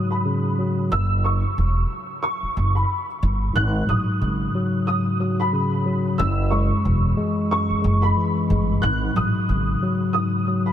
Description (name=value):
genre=hip hop, boom-bap hip-hop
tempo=91 BPM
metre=4/4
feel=swing 58% on 16ths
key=unclear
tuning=A4 = 441 Hz
part: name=dark upright piano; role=melody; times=0.0-10.7 s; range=B5 to F#6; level=-26 LUFS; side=right 1 dB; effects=ensemble chorus, ping-pong delay
part: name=mellow tine electric piano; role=accompaniment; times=0.0-10.7 s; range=F#2 to G#3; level=-23 LUFS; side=left 1 dB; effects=none
part: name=upright bass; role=bass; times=0.9-9.7 s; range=E1 to A1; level=-21 LUFS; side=equal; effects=none
room=light reverb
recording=none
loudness=-19 LUFS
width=side -10 dB against mid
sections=0.0-10.7 A section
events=none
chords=0.0 G#m7; 0.9 F#5; 3.6 G#m7; 6.2 F#sus2; 8.8 G#7(no3)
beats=0.26 | 0.91 1.57 2.23 2.89 | 3.55 4.21 4.87 5.53 | 6.19 6.85 7.51 8.17 | 8.83 9.49 10.14